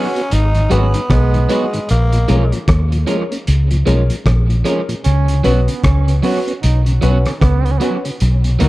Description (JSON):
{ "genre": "roots reggae", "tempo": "76 BPM", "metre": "4/4", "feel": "swing 61% on 16ths", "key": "unclear", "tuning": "A4 = 439 Hz", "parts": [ { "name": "growling tenor saxophone", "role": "melody", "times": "0.0-2.6 s", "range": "G#3 to D#4", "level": "-22 LUFS", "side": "equal", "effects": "tape echo" }, { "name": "bright trombone", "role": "second line", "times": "0.0-8.0 s", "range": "B3 to F#4", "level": "-24 LUFS", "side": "right 7 dB", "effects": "tape echo" }, { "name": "electric guitar at the edge of break-up", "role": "accompaniment", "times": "0.0-8.7 s", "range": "E#3 to F#4", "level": "-23 LUFS", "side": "right 4 dB", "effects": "tape echo" }, { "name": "warm upright piano", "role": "stabs", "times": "0.0-8.7 s", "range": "B3 to B4", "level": "-23 LUFS", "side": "left 5 dB", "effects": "none" }, { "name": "mellow tonewheel organ", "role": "accompaniment", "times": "0.2-8.7 s", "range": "G#2 to F#4", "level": "-25 LUFS", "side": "left 1 dB", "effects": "chorus vibrato, slow rotary speaker, analog delay" }, { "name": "cloth-damped thuddy drum kit", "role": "drums", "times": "0.2-8.7 s", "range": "hi-hat, kick drum, rim click", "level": "-21 LUFS", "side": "equal", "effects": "analog delay" }, { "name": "vintage muted fingered electric bass", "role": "bass", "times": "0.3-8.7 s", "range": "G#1 to D#2", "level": "-13 LUFS", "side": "equal", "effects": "none" } ], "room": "small room ambience", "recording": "dark, warm production", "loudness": "-12 LUFS", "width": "side -18 dB against mid", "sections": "0.0-8.7 A section", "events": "none", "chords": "0.0 G#m7; 1.9 A#m7; 5.0 C#7sus4", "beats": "0.31 1.10 | 1.89 2.68 3.47 4.26 | 5.05 5.84 6.63 7.42 | 8.21" }